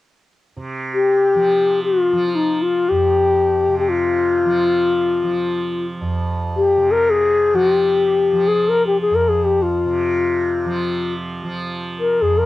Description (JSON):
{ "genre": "indian classical", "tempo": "free time", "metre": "none", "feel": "none", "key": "F raga darbari", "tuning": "A4 = 440 Hz", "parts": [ { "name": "tanpura", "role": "drone", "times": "0.6-12.5 s", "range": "F2 to F3", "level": "-24 LUFS", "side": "right 2 dB", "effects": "cassette tape" }, { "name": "breathy mellow bansuri", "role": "melody", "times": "0.9-12.5 s", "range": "Eb4 to Bb4", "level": "-15 LUFS", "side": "left 3 dB", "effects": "none" } ], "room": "light reverb", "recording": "home recording on cassette", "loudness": "-15 LUFS", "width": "side -15 dB against mid", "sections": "0.6-12.5 A section", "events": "none", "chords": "none" }